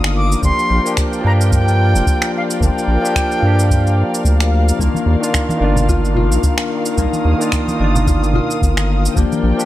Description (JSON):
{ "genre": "sunset chillout", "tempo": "110 BPM", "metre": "4/4", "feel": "swing 56% on 16ths", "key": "C minor", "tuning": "A4 = 442 Hz", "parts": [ { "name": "barky tine electric piano", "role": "accompaniment", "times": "0.0-9.7 s", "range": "Eb3 to G4", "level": "-20 LUFS", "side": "moving between left 5 dB and right 3 dB", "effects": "auto-pan, low-pass filter, tape echo" }, { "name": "muted studio string section", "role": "sustained chords", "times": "0.0-9.7 s", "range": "Eb3 to Eb6", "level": "-24 LUFS", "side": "equal", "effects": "none" }, { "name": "round analog bass", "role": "bass", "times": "0.0-9.5 s", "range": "F1 to G2", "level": "-15 LUFS", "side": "equal", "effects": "none" }, { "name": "electronic finger snaps and cabasa", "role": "drums", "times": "0.0-9.7 s", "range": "none", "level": "-24 LUFS", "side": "right 2 dB", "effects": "overdrive, small room ambience" }, { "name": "bright reedy silver concert flute", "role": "melody", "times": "0.2-4.5 s", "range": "F5 to D6", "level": "-21 LUFS", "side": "left 1 dB", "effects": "tape echo" }, { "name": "electronic kick drum", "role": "drums", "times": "0.4-9.3 s", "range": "none", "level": "-17 LUFS", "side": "equal", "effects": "small room ambience" }, { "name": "concert harp", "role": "arpeggios", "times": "4.8-9.7 s", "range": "Bb3 to F4", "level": "-24 LUFS", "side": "left 7 dB", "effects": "tape echo" }, { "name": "congas", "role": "percussion", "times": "4.9-9.4 s", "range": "none", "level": "-24 LUFS", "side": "right 2 dB", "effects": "none" } ], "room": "light reverb, small room ambience", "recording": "none", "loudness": "-13 LUFS", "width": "side -14 dB against mid", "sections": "0.0-9.7 A section", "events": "none", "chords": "0.4 Gm7; 4.8 Cm11 (rootless)" }